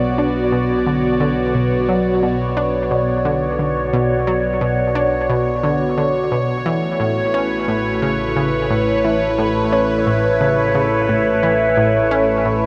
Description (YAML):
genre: ambient, sequencer-driven space music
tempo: 88 BPM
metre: 4/4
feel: straight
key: B minor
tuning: A4 = 441 Hz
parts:
  - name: phased analog pad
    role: sustained chords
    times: 0.0-12.7 s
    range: A3 to D5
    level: -20 LUFS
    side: equal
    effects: phaser, chorus
  - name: analog pluck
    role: riff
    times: 0.0-12.7 s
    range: A2 to D4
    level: -23 LUFS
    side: equal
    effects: chorus, analog delay
  - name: analog drone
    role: bass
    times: 0.0-12.7 s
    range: A1 to B1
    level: -29 LUFS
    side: equal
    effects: chorus
room: wet cathedral reverb, RT60 5.3 s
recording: dreamy mix soaked in reverb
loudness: -18 LUFS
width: mono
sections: 0.0-12.7 A section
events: none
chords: 0.0 Bm; 6.7 A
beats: 0.52 | 1.20 1.89 2.57 3.25 | 3.93 4.61 5.29 5.98 | 6.66 7.34 8.02 8.70 | 9.38 10.07 10.75 11.43 | 12.11